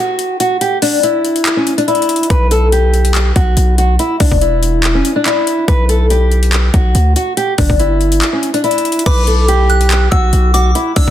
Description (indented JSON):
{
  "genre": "hip hop, trap",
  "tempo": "142 BPM",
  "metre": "4/4",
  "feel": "half-time",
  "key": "B minor",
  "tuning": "A4 = 439 Hz",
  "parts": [
    { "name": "fingerpicked old ladder-braced acoustic guitar", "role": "melody", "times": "0.0-11.1 s", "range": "C#4 to B4", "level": "-14 LUFS", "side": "equal", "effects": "low-pass filter, tape echo" },
    { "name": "trap drum kit", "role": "drums", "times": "0.2-11.1 s", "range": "crash cymbal, handclaps, hi-hat, kick drum", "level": "-16 LUFS", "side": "equal", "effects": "overdrive" },
    { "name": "hard-hitting 808-style bass", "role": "bass", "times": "2.3-11.1 s", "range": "E1 to D2", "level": "-12 LUFS", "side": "equal", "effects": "none" },
    { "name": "soft synth bell", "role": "second line", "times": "9.1-11.1 s", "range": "D6 to F#6", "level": "-19 LUFS", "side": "equal", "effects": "chorus, phaser, tape echo" }
  ],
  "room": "digital ambience",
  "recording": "dense, heavily limited modern master",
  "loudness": "-10 LUFS",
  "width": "side -11 dB against mid",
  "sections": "0.0-9.1 A section; 9.1-11.1 B section",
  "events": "break 0.0-2.3; kick muted 8.2-9.1",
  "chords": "0.0 N.C.; 2.3 B5; 4.0 E5; 5.7 B5; 7.4 Em/G; 9.1 Bm",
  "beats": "0.19 | 0.61 1.03 1.46 1.88 | 2.30 2.72 3.15 3.57 | 3.99 4.41 4.84 5.26 | 5.68 6.10 6.53 6.95 | 7.37 7.79 8.22 8.64 | 9.06 9.48 9.91 10.33 | 10.75"
}